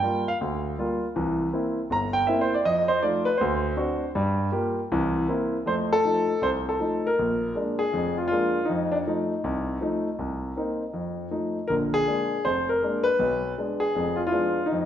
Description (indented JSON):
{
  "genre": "solo jazz",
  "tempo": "160 BPM",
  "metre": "4/4",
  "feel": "swing 65% on 8ths, rubato",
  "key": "unclear",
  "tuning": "A4 = 440 Hz",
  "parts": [
    { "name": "warm grand piano", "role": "solo", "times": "0.0-14.9 s", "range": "F1 to Bb5", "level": "-23 LUFS", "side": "equal", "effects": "none" }
  ],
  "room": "wet recital hall reverb, RT60 1.5 s",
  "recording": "recorded in a church or concert hall",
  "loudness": "-23 LUFS",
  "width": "side -10 dB against mid",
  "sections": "0.0-5.7 A section; 5.7-14.9 B section",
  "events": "grand piano solo 0.0-5.7",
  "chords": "0.0 Gm7; 1.2 C7; 2.6 F7; 3.4 D7; 4.1 Gm7; 4.9 C7; 5.7 F7; 7.2 Bb7; 8.7 F7; 10.2 Cm7; 10.9 F7; 11.7 Bb7; 13.2 Bdim7",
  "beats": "0.02 0.40 0.78 | 1.15 1.52 1.90 2.27 | 2.64 3.01 3.39 3.77 | 4.15 4.53 4.91 5.30 | 5.69 6.07 6.45 6.82 | 7.20 7.58 7.95 8.33 | 8.70 9.07 9.44 9.81 | 10.18 10.56 10.93 11.32 | 11.70 12.08 12.46 12.84 | 13.21 13.58 13.95 14.33 | 14.70"
}